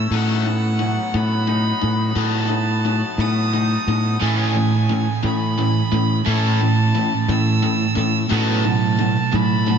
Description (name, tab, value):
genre	rock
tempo	59 BPM (dotted quarters)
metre	6/8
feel	straight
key	unclear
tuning	A4 = 440 Hz
part	rich violin	melody	0.0-9.8 s	F#5 to E6	-24 LUFS	right 1 dB	diffuse ambient delay
part	twangy electric guitar	arpeggios	0.0-4.2 s	A2 to D#4	-32 LUFS	left 3 dB	lush chorus, diffuse ambient delay
part	overdriven semi-hollow guitar	riff	0.0-9.8 s	A3 to F#4	-24 LUFS	left 7 dB	none
part	growling fingered electric bass	bass	0.0-9.8 s	A2	-20 LUFS	equal	overdrive
part	crunchy overdriven guitar	riff	4.2-9.8 s	A2 to B3	-22 LUFS	right 8 dB	lush chorus
room	moderate huge ambient reverb, RT60 8.9 s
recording	dreamy mix soaked in reverb, nothing above 7.7 kHz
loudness	-17 LUFS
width	side -7 dB against mid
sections	0.0-9.8 A section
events	build-up 0.0-9.8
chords	0.1 B7/A; 4.2 Amaj7; 8.3 B7/A